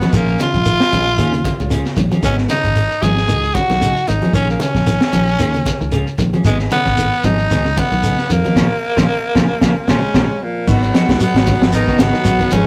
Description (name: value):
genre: afrobeat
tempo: 114 BPM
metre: 4/4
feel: swing 56% on 16ths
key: G# dorian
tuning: A4 = 441 Hz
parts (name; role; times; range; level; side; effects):
- raspy tenor saxophone; melody; 0.0-12.7 s; G#3 to G#4; -21 LUFS; equal; none
- electric guitar at the edge of break-up; arpeggios; 0.0-12.7 s; A#2 to F#3; -23 LUFS; equal; none
- clean electric guitar; stabs; 0.0-12.6 s; E#3 to G#4; -29 LUFS; equal; none
- crunchy breakbeat drum kit; drums; 0.0-12.6 s; crash cymbal, hi-hat, kick drum, snare drum; -22 LUFS; equal; none
- congas; percussion; 0.0-12.7 s; none; -27 LUFS; equal; none
- shekere; percussion; 0.0-12.7 s; none; -26 LUFS; equal; none
- fingered electric bass; bass; 0.1-12.7 s; G#1 to E#2; -22 LUFS; equal; none
- raspy baritone saxophone; second line; 9.9-12.7 s; A#2 to D#3; -27 LUFS; equal; none
- warm trombone; second line; 9.9-12.7 s; E#3 to B3; -26 LUFS; equal; none
room: moderate small room ambience, RT60 0.5 s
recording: rough rehearsal-room recording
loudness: -15 LUFS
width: mono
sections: 0.0-10.7 A section; 10.7-12.7 B section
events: band accent 8.6-10.7; drum fill 10.0-10.7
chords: 0.1 A#m7; 2.2 G#m7; 4.3 A#m7; 6.4 G#m7; 8.6 A#m7; 10.7 G#m7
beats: | 0.14 0.66 1.18 1.71 | 2.23 2.76 3.29 3.81 | 4.34 4.87 5.39 5.92 | 6.45 6.98 7.51 8.03 | 8.56 9.09 9.62 10.15 | 10.67 11.20 11.73 12.25